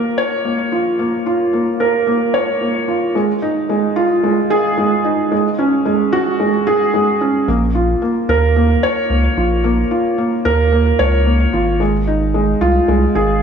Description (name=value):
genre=piano and strings electronica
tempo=111 BPM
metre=4/4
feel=straight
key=Bb minor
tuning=A4 = 439 Hz
part: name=felt-muted upright piano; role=riff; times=0.0-13.4 s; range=Ab3 to Db5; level=-14 LUFS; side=right 1 dB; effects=digital delay
part: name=round analog bass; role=bass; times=0.0-13.4 s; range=Gb1 to Eb2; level=-19 LUFS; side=right 1 dB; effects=high-pass filter
room=wet scoring stage reverb, RT60 1.7 s, small room ambience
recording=studio reverb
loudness=-13 LUFS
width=side -7 dB against mid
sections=0.0-7.5 A section; 7.5-13.4 B section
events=build-up 0.0-7.5; drop 7.5-13.4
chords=0.0 Bbm; 3.2 Fm7/Ab; 5.3 Gbadd9; 7.5 Bbm; 11.8 Fm7/Ab